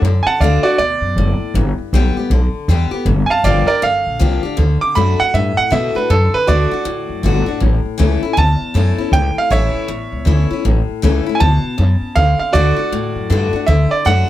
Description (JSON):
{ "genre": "rockabilly", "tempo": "158 BPM", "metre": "4/4", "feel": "swing 62% on 8ths", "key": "D major", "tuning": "A4 = 440 Hz", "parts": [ { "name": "picked steel-string acoustic guitar", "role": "accompaniment", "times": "0.0-14.3 s", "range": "E2 to G4", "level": "-21 LUFS", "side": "left 6 dB", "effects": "none" }, { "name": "upright bass", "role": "bass", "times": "0.0-14.3 s", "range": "F#1 to B2", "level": "-15 LUFS", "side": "equal", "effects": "none" }, { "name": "bright upright piano", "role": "melody", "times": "0.2-14.3 s", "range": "F#4 to D6", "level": "-17 LUFS", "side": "right 3 dB", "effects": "none" } ], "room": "little or no reverb", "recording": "none", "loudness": "-13 LUFS", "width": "side -13 dB against mid", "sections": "0.0-13.7 A section", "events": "upright piano solo 0.0-13.7", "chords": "0.0 D; 1.5 G; 3.1 Gm7; 4.6 D; 7.6 A; 12.2 D", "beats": "| 0.03 0.41 0.79 1.17 | 1.54 1.92 2.30 2.68 | 3.06 3.44 3.82 4.20 | 4.58 4.96 5.34 5.72 | 6.10 6.48 6.86 7.23 | 7.61 7.99 8.37 8.75 | 9.13 9.51 9.89 10.27 | 10.65 11.03 11.40 11.78 | 12.16 12.54 12.92 13.30 | 13.68 14.06" }